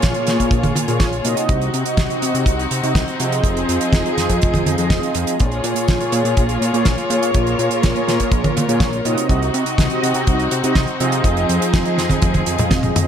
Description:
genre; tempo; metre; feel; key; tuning
italo disco; 123 BPM; 4/4; straight; Bb minor; A4 = 443 Hz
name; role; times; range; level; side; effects
dark chamber string section; sustained chords; 0.0-13.1 s; F3 to Db5; -22 LUFS; left 2 dB; none
mellow synth brass; stabs; 0.0-13.1 s; Bb2 to Eb5; -21 LUFS; right 2 dB; chorus, ping-pong delay
fat analog bass; bass; 0.0-13.1 s; F1 to C3; -23 LUFS; equal; ping-pong delay
damped 70s drum kit; drums; 0.0-13.1 s; hi-hat, snare drum, toms; -22 LUFS; right 1 dB; gated reverb
kick drum; drums; 0.0-12.8 s; none; -18 LUFS; equal; none
room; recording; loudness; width
light reverb, studio ambience; none; -15 LUFS; side -8 dB against mid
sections
0.0-13.1 A section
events
drum fill 12.2-13.1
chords
0.0 Bbm7; 1.5 Cdim; 3.4 Fm7; 5.4 Bbm7; 9.3 Cdim; 11.2 Fm7

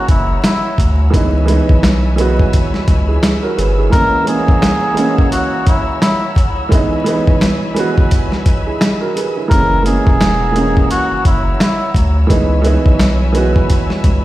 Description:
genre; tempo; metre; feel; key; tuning
hip hop, boom-bap hip-hop; 86 BPM; 4/4; swing 59% on 16ths; C# dorian; A4 = 441 Hz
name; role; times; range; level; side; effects
trumpet with cup mute; melody; 0.0-11.9 s; E4 to A#4; -19 LUFS; equal; high-pass filter, low-pass filter, tape echo
dark grand piano; accompaniment; 0.0-14.2 s; E3 to B4; -17 LUFS; right 2 dB; high-pass filter, low-pass filter
muted studio string section; sustained chords; 0.0-14.2 s; C#5 to E6; -26 LUFS; left 3 dB; high-pass filter, low-pass filter
saturated sub bass; bass; 0.1-3.9, 9.5-14.2 s; E1 to D2; -15 LUFS; equal; none
dusty soul sampler-style drum kit; drums; 0.1-14.2 s; hi-hat, kick drum, snare drum; -14 LUFS; equal; none
room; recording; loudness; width
light reverb, small room ambience; played on a big sound system in a bare room, stone room reverb, vinyl crackle; -11 LUFS; side -16 dB against mid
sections
0.0-14.2 A section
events
none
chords
0.0 F#7; 1.1 C#m7; 3.9 F#7; 6.7 C#m7; 9.5 F#7; 12.3 C#m7

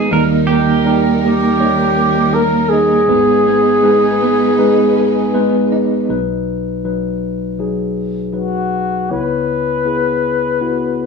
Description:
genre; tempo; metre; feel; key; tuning
acoustic folk-pop ballad; 80 BPM; 4/4; straight; G# harmonic minor; A4 = 440 Hz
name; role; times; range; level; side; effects
pedal steel guitar; second line; 0.0-1.0 s; G4 to A#4; -18 LUFS; right 7 dB; none
mellow tine electric piano; accompaniment; 0.0-11.1 s; G#1 to C#5; -17 LUFS; left 2 dB; none
warm symphonic string section; sustained chords; 0.0-6.1 s; D#3 to B4; -22 LUFS; right 1 dB; none
electric guitar through a small old amp; arpeggios; 0.0-6.2 s; D#3 to G#4; -17 LUFS; right 6 dB; tremolo
breathy flugelhorn; melody; 1.2-11.1 s; F#4 to B4; -15 LUFS; left 1 dB; plate reverb
room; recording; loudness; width
light reverb; studio reverb; -12 LUFS; side -5 dB against mid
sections
0.0-6.1 A section; 6.1-11.1 B section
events
none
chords
0.1 D#; 3.1 G#m; 6.1 B; 9.1 C#m7

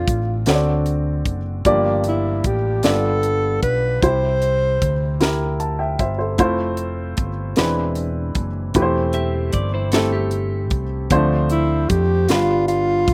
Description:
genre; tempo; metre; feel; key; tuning
slow gospel; 51 BPM (dotted quarters); 6/8; straight; unclear; A4 = 440 Hz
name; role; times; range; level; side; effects
breathy alto saxophone; melody; 0.0-5.2, 11.5-13.1 s; E4 to C5; -22 LUFS; equal; none
warm upright piano; accompaniment; 0.0-13.1 s; G2 to A5; -24 LUFS; equal; slapback echo
fingered electric bass; bass; 0.0-13.1 s; E1 to F2; -25 LUFS; equal; none
crisp fusion drum kit; drums; 0.1-13.1 s; hi-hat, kick drum, snare drum; -24 LUFS; equal; none
clean electric guitar; second line; 9.1-11.1 s; C4 to E5; -30 LUFS; equal; spring reverb, slapback echo
room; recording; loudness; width
little or no reverb; recorded outdoors, with no room sound; -20 LUFS; mono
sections
0.0-13.1 A section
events
none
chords
0.5 D7; 1.7 Gm7; 2.8 G7; 4.0 C; 6.4 Fmaj7; 7.6 E7b13; 8.7 Am7/E; 11.1 Dm7; 12.3 G7

